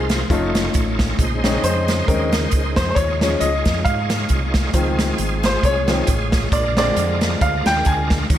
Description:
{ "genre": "uptempo gospel", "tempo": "135 BPM", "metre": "4/4", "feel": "swing 56% on 8ths", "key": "unclear", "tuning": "A4 = 441 Hz", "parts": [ { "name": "bright upright piano", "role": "accompaniment", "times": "0.0-8.3 s", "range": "D3 to Ab5", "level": "-21 LUFS", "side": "left 2 dB", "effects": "none" }, { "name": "bright tonewheel organ", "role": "sustained chords", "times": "0.0-8.4 s", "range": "Db3 to C#5", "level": "-26 LUFS", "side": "right 2 dB", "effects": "slow rotary speaker, chorus vibrato" }, { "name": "fingered electric bass", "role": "bass", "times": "0.0-8.4 s", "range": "F1 to Ab2", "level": "-23 LUFS", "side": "equal", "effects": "none" }, { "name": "swinging big-band drum kit", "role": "drums", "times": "0.1-8.4 s", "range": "hi-hat, kick drum, snare drum", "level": "-20 LUFS", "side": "equal", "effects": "none" } ], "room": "light reverb, small room ambience", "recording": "none", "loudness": "-16 LUFS", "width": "side -11 dB against mid", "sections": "0.0-8.4 A section", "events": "upright piano solo 0.0-8.4", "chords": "0.3 Faug7; 1.2 Bbm11; 3.0 Eb9sus4; 4.7 Dbmaj7; 6.5 Bb7" }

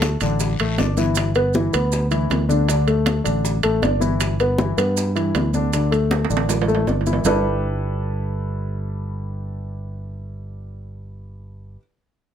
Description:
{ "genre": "Afro-Cuban jazz", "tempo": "158 BPM", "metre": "4/4", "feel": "straight", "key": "G major", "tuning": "A4 = 440 Hz", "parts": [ { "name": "warm baby grand piano", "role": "accompaniment", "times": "0.0-11.8 s", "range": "D3 to D5", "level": "-22 LUFS", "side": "left 2 dB", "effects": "none" }, { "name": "fingered electric bass", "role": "bass", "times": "0.0-11.8 s", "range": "G1 to G2", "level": "-22 LUFS", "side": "right 1 dB", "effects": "none" }, { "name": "bongos", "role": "percussion", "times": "0.0-7.3 s", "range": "none", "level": "-31 LUFS", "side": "left 5 dB", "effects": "none" }, { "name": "congas", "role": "percussion", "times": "0.0-7.3 s", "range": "none", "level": "-26 LUFS", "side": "left 1 dB", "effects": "none" }, { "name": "guiro", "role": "percussion", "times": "0.0-1.2 s", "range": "none", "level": "-33 LUFS", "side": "left 5 dB", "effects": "none" }, { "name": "maracas", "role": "percussion", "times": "0.0-7.3 s", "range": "none", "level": "-32 LUFS", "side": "right 10 dB", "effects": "none" }, { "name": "timbales", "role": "percussion", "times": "0.0-7.3 s", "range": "none", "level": "-26 LUFS", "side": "right 8 dB", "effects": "none" } ], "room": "light reverb", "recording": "close, detailed microphones", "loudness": "-18 LUFS", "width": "side -9 dB against mid", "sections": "0.0-7.3 A section; 7.3-10.3 B section", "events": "drum fill 6.1-7.3", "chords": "0.0 Dsus4; 1.2 G6; 2.7 Dsus4; 4.2 G6; 5.7 Dsus4; 7.3 G69" }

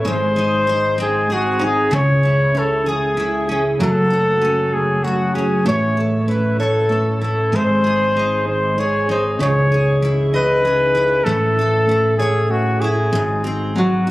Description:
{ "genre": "six-eight pop ballad", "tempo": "64 BPM (dotted quarters)", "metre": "6/8", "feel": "straight", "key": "C# minor", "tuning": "A4 = 441 Hz", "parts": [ { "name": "warm flugelhorn", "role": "melody", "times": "0.0-14.1 s", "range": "F#4 to C#5", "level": "-18 LUFS", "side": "equal", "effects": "ping-pong delay" }, { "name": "picked steel-string acoustic guitar", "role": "accompaniment", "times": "0.0-14.1 s", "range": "G#2 to D#5", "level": "-20 LUFS", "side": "equal", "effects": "double-tracked left and right" }, { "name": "mellow electric guitar", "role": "arpeggios", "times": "0.0-14.1 s", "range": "F#2 to B#4", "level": "-26 LUFS", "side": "equal", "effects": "analog chorus" }, { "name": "fingered electric bass", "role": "bass", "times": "0.0-14.1 s", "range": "F#1 to C#2", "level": "-23 LUFS", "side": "equal", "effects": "none" } ], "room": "light reverb, studio reverb", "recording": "recorded on a phone in the room, club reverb, compression", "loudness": "-15 LUFS", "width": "side -17 dB against mid", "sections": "0.0-1.9 A section; 1.9-14.1 B section", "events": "none", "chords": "0.0 G#; 1.9 C#m; 3.8 F#m; 5.7 Aadd9; 7.5 G#; 9.4 C#madd9; 11.3 Aadd9; 13.1 G#7" }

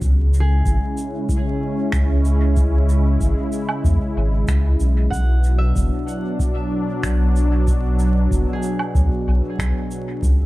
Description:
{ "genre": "ambient dub", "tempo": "94 BPM", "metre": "4/4", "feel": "straight", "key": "B dorian", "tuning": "A4 = 440 Hz", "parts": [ { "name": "warm analog pad", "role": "sustained chords", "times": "0.0-10.5 s", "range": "B2 to E4", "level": "-23 LUFS", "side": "equal", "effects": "chorus" }, { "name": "soft dub sub bass", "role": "bass", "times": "0.0-10.5 s", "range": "F#1 to E2", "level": "-16 LUFS", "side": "equal", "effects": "none" }, { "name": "electronic kick drum", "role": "drums", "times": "0.0-10.4 s", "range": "none", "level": "-23 LUFS", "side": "equal", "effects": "none" }, { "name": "shaker, finger snaps and woodblock", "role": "drums", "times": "0.0-10.4 s", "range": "none", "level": "-31 LUFS", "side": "right 3 dB", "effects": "dub echo" }, { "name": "concert harp", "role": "arpeggios", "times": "0.4-10.5 s", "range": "G#4 to F#5", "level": "-34 LUFS", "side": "right 1 dB", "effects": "dub echo" } ], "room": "small room ambience", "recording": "echo-heavy mix, vinyl crackle", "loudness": "-17 LUFS", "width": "side -18 dB against mid", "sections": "0.0-10.5 A section", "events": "none", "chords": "0.0 C#m; 5.1 Bmadd11" }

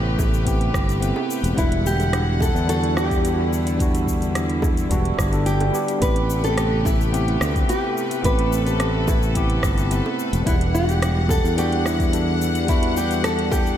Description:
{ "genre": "sunset chillout", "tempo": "108 BPM", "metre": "4/4", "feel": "straight", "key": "A dorian", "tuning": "A4 = 440 Hz", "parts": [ { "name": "tine electric piano", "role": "accompaniment", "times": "0.0-13.8 s", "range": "G3 to F#5", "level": "-26 LUFS", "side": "equal", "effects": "auto-pan, low-pass filter, ping-pong delay" }, { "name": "rich chamber string section", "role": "sustained chords", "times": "0.0-13.8 s", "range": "C3 to F#5", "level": "-28 LUFS", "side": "left 1 dB", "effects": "none" }, { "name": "modern bright fingered electric bass", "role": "bass", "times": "0.0-13.8 s", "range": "E1 to E2", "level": "-22 LUFS", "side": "equal", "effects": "none" }, { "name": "electronic kick drum", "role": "drums", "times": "0.2-13.6 s", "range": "none", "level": "-22 LUFS", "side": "equal", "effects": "none" }, { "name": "smooth R&B drum kit", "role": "drums", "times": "0.2-13.8 s", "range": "hi-hat, rim click, shaker", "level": "-31 LUFS", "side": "equal", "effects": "none" }, { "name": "bongos", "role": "percussion", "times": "0.2-13.6 s", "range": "none", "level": "-34 LUFS", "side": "right 2 dB", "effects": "none" }, { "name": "nylon-string guitar", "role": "melody", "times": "1.6-13.8 s", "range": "E4 to B4", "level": "-25 LUFS", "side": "left 1 dB", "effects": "vintage 12-bit sampler grit, ping-pong delay" } ], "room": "moderate lush hall reverb, RT60 1.8 s", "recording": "dreamy mix soaked in reverb", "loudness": "-18 LUFS", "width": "side -10 dB against mid", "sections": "0.0-13.8 A section", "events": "filter sweep on tine electric piano 0.0-13.8", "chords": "0.0 Am9; 1.6 Em9; 6.0 Am9; 10.5 Em9" }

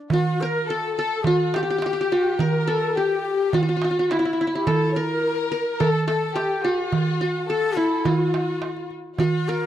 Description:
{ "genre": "Arabic maqam ensemble", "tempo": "106 BPM", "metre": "4/4", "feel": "straight", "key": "unclear", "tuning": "A4 = 439 Hz", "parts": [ { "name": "qanun", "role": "melody", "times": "0.0-9.7 s", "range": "D4 to Bb4+20c", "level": "-24 LUFS", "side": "right 1 dB", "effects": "none" }, { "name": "breathy mellow ney", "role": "second line", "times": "0.1-9.7 s", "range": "E4 to C5+24c", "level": "-27 LUFS", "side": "left 4 dB", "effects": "none" }, { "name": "warm studio violin section", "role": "second line", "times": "0.1-9.7 s", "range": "E4 to C#5", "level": "-28 LUFS", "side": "left 4 dB", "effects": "none" }, { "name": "darbuka", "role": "percussion", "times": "0.1-9.3 s", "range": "none", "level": "-24 LUFS", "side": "right 3 dB", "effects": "none" } ], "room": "small room ambience", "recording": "dry, close 1970s-style studio recording", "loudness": "-20 LUFS", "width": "side -11 dB against mid", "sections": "0.1-9.7 A section", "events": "none", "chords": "none" }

